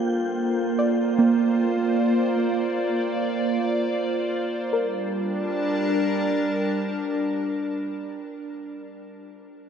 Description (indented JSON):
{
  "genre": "ambient",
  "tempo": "free time",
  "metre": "none",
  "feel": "none",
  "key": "G minor",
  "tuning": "A4 = 440 Hz",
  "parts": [
    { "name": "evolving wavetable pad", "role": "sustained chords", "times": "0.0-8.6 s", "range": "G3 to A5", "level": "-23 LUFS", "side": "right 1 dB", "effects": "chorus, built-in reverb" },
    { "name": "wind-like tuned noise texture", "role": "texture", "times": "0.0-4.8 s", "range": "G5 to G6", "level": "-42 LUFS", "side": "equal", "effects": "built-in reverb" },
    { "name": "soft round pluck", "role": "arpeggios", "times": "0.8-9.1 s", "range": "Bb3 to D5", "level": "-27 LUFS", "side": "right 2 dB", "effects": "chorus, diffuse ambient delay" }
  ],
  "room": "wet huge ambient reverb, RT60 7.6 s",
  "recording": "none",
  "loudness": "-22 LUFS",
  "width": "side -7 dB against mid",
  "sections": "0.0-4.7 A section; 4.7-7.9 B section",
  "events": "fade-out on synth texture 0.0-4.7; filter sweep on ambient pad 0.0-4.7",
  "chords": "0.0 Bb69; 4.7 Gmadd9"
}